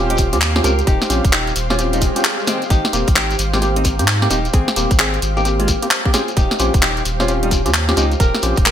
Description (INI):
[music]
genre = UK garage, two-step garage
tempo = 131 BPM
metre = 4/4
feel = swing 63% on 16ths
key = Ab major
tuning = A4 = 440 Hz
[part]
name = percussive organ stab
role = stabs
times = 0.0-8.6 s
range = Bb3 to G4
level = -22 LUFS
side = equal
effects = lush chorus, digital delay
[part]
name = saturated sub bass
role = bass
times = 0.0-8.7 s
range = Eb1 to Ab2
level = -20 LUFS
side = equal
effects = none
[part]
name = granular cloud pad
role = texture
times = 0.0-8.7 s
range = G4 to F5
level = -26 LUFS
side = right 1 dB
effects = built-in reverb, sidechain pumping
[part]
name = flamenco guitar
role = melody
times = 0.1-8.7 s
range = Eb3 to Bb4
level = -24 LUFS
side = left 1 dB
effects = digital delay
[part]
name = garage drum kit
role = drums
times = 0.1-8.7 s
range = handclaps, hi-hat, snare drum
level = -19 LUFS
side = equal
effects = gated reverb
[part]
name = electronic kick drum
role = drums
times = 0.2-8.6 s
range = none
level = -16 LUFS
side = equal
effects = none
[part]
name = shekere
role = percussion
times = 0.2-8.7 s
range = none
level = -27 LUFS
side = left 3 dB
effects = none
[part]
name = swell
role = sound effects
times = 2.0-2.7 s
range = none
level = -29 LUFS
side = right 2 dB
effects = none
[sound]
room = light reverb, digital ambience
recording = bright 1980s-style digital production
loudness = -14 LUFS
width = side -10 dB against mid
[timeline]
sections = 0.0-8.7 A section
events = swell 2.0-2.7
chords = 0.0 Eb13; 2.7 Abmaj7; 6.1 Eb13